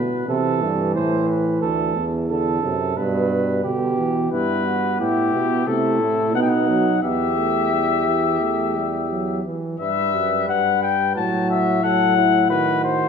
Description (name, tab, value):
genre	classical, imitative canzona for brass ensemble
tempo	89 BPM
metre	4/4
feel	straight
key	G major, E minor from 4.3 s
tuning	A4 = 440 Hz
part	mellow flugelhorn	second line	0.0-13.1 s	D#4 to C5	-24 LUFS	right 4 dB	none
part	warm trombone	accompaniment	0.0-13.1 s	B2 to B3	-25 LUFS	right 3 dB	none
part	warm bass trombone	bass	0.0-13.1 s	D2 to C3	-24 LUFS	right 1 dB	none
part	mellow trumpet	melody	4.3-13.1 s	G4 to A5	-21 LUFS	left 8 dB	none
room	wet recital hall reverb, RT60 1.7 s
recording	minimal, uncompressed stereo recording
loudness	-18 LUFS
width	side -6 dB against mid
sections	0.0-4.3 A section; 4.3-9.8 B section; 9.8-13.1 C section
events	none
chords	0.3 Am; 1.6 D; 3.0 G; 4.3 Em/G; 5.7 Am; 6.3 B; 7.0 Em; 11.2 F#m7/A; 12.5 B